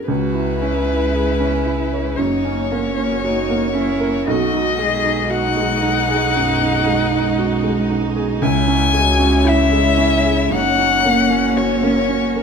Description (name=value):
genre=neoclassical piano and strings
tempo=58 BPM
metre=4/4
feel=rubato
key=B major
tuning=A4 = 440 Hz
part: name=warm violin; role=melody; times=0.0-12.4 s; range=B4 to G#5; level=-20 LUFS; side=left 7 dB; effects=none
part: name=felt-muted upright piano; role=accompaniment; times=0.0-12.4 s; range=B1 to C#5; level=-19 LUFS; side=right 2 dB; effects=none
part: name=rich cello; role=second line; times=0.1-12.4 s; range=C#4 to G#4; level=-24 LUFS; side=right 6 dB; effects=none
part: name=rich chamber string section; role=sustained chords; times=0.1-12.4 s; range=G#3 to E5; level=-27 LUFS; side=equal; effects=none
part: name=clear double bass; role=bass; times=0.1-12.4 s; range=F#1 to C#2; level=-24 LUFS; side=left 1 dB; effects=none
room=wet large studio reverb, RT60 1.3 s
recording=minimal, uncompressed stereo recording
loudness=-15 LUFS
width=side -6 dB against mid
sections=0.1-12.4 A section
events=none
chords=0.1 C#m; 2.2 F#; 4.3 B6; 8.4 C#m; 10.5 F#